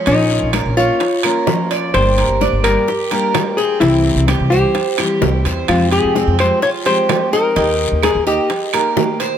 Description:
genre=latin, Cuban son and guajira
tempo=128 BPM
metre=4/4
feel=straight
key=F minor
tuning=A4 = 441 Hz
part: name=picked steel-string acoustic guitar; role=accompaniment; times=0.0-9.4 s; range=C3 to G4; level=-22 LUFS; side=left 3 dB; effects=none
part: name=Cuban tres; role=arpeggios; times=0.0-9.4 s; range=C4 to Eb5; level=-21 LUFS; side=right 6 dB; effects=none
part: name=hollow-body jazz guitar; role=melody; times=0.1-9.2 s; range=Eb4 to Db5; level=-17 LUFS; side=left 2 dB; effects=none
part: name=upright bass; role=bass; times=0.1-8.4 s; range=G1 to F2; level=-18 LUFS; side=equal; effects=none
part: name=bongos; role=percussion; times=0.1-9.4 s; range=none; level=-23 LUFS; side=left 6 dB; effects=none
part: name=guiro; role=percussion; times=0.1-9.4 s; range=none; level=-30 LUFS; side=left 7 dB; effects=none
part: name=timbales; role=percussion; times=0.1-9.4 s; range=none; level=-24 LUFS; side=right 7 dB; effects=none
part: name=claves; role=percussion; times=0.5-9.0 s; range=none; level=-26 LUFS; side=right 10 dB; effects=none
room=light reverb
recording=none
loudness=-13 LUFS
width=side -9 dB against mid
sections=0.0-9.4 A section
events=none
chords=0.1 Bbm; 1.9 Gm; 3.8 C; 5.7 Fmadd9; 7.6 Eb

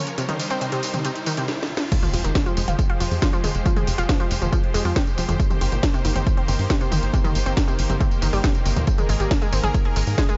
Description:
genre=uplifting trance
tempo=138 BPM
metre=4/4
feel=straight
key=F minor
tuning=A4 = 440 Hz
part: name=supersaw pad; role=sustained chords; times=0.0-10.4 s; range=Eb3 to Db5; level=-32 LUFS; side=equal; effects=sidechain pumping
part: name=riser and impact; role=sound effects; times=0.0-3.7 s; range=none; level=-36 LUFS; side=equal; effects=none
part: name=techno drum kit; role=drums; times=0.1-10.4 s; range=crash cymbal, hi-hat, snare drum, tambourine, toms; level=-30 LUFS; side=equal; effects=sidechain pumping on hats, sidechain pumping on perc, sidechain pumping on toms, sidechain pumping on cymbals
part: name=analog pluck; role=arpeggios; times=0.2-10.3 s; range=F2 to Ab4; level=-30 LUFS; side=equal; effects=chorus, sidechain pumping, delay
part: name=electronic kick drum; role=drums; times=1.9-10.3 s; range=none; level=-24 LUFS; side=equal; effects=none
part: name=tight sequencer bass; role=bass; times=2.1-10.2 s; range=F1 to Ab2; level=-26 LUFS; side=equal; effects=sidechain pumping
room=digital ambience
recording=nothing above 7.6 kHz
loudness=-22 LUFS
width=mono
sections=0.0-1.9 A section; 1.9-10.4 B section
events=build-up 0.0-1.9; riser 0.0-1.9; drum fill 1.5-1.9; drop 1.9-10.4; impact 1.9-3.7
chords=0.2 Cm7; 1.9 Fmadd9; 5.4 Cm7/G; 8.9 Absus2

